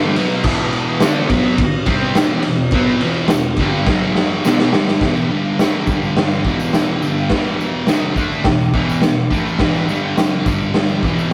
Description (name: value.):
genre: garage rock duo or trio.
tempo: 105 BPM.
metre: 4/4.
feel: straight.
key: E minor.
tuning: A4 = 440 Hz.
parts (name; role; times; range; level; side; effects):
thick fuzz guitar; riff; 0.0-11.3 s; E2 to D4; -20 LUFS; equal; distortion.
raw garage drum kit; drums; 0.2-11.3 s; crash cymbal, kick drum, ride cymbal, snare drum; -19 LUFS; equal; none.
tambourine; percussion; 1.0-11.3 s; none; -42 LUFS; equal; none.
room: light reverb.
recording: rough rehearsal-room recording, faint mains hum.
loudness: -17 LUFS.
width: mono.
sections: 0.0-5.0 A section; 5.0-11.3 B section.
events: drum fill 3.9-5.0.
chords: 0.0 Em; 3.9 F#5; 4.4 Em; 5.9 G5; 6.5 Em; 10.5 G5.